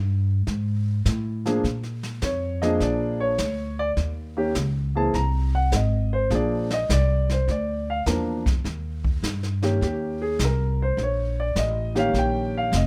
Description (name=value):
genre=jazz piano trio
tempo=103 BPM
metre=4/4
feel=swing 68% on 8ths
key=unclear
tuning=A4 = 441 Hz
part: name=upright bass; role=bass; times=0.0-12.9 s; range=F1 to Bb2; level=-27 LUFS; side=equal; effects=none
part: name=jazz brush drum kit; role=drums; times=0.5-12.9 s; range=brushed snare drum, hi-hat, kick drum, snare drum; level=-31 LUFS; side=equal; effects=none
part: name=warm grand piano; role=melody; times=1.5-12.9 s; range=Eb3 to Bb5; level=-27 LUFS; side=equal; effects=none
room=light reverb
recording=none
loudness=-24 LUFS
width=mono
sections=0.0-8.6 A section; 8.6-12.9 B section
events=grand piano solo 8.6-12.9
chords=0.0 N.C.; 1.6 Bb7; 4.0 Eb7(no3); 5.1 Abadd9; 6.3 Bb; 8.6 Eb7